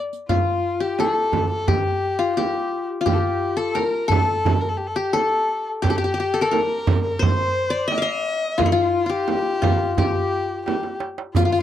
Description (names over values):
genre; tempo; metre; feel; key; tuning
Arabic maqam ensemble; 87 BPM; 4/4; straight; unclear; A4 = 437 Hz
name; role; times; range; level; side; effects
qanun; melody; 0.0-11.6 s; E4-50c to F5; -22 LUFS; left 4 dB; none
riq; percussion; 0.1-0.2, 11.4-11.6 s; none; -31 LUFS; right 14 dB; none
dark violin; second line; 0.3-11.6 s; F4 to E5-45c; -26 LUFS; left 3 dB; none
darbuka; percussion; 0.3-11.5 s; none; -25 LUFS; right 2 dB; none
frame drum; percussion; 0.3-11.5 s; none; -25 LUFS; right 5 dB; none
room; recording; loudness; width
light reverb; dry, close 1970s-style studio recording; -19 LUFS; side -11 dB against mid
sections
0.3-11.6 A section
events
drum fill 10.7-11.4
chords
none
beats
| 0.30 0.99 1.69 2.38 | 3.07 3.76 4.46 5.15 | 5.84 6.53 7.22 7.91 | 8.60 9.29 9.98 10.68 | 11.37